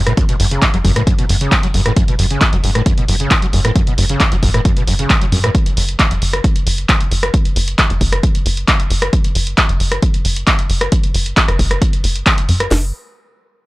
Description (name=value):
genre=driving peak-time techno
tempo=134 BPM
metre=4/4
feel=straight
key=F# minor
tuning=A4 = 440 Hz
part: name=tight sequencer bass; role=bass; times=0.0-12.9 s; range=F#1 to F#2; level=-17 LUFS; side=equal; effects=sidechain pumping
part: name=overdriven acid bass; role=riff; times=0.1-5.5 s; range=E2 to F#3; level=-18 LUFS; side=equal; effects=distortion, ensemble chorus, sidechain pumping, analog delay
part: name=punchy analog drum machine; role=drums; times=0.1-12.7 s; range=handclaps, hi-hat, rim click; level=-17 LUFS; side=equal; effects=none
part: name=techno drum kit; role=drums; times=0.2-12.8 s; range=hi-hat, kick drum, snare drum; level=-15 LUFS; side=equal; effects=overdrive
room=little or no reverb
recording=dry, gritty hardware recording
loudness=-12 LUFS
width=side -20 dB against mid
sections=0.0-12.7 A section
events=filter sweep on analog synth bass 0.0-12.7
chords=0.0 F#5; 12.7 N.C.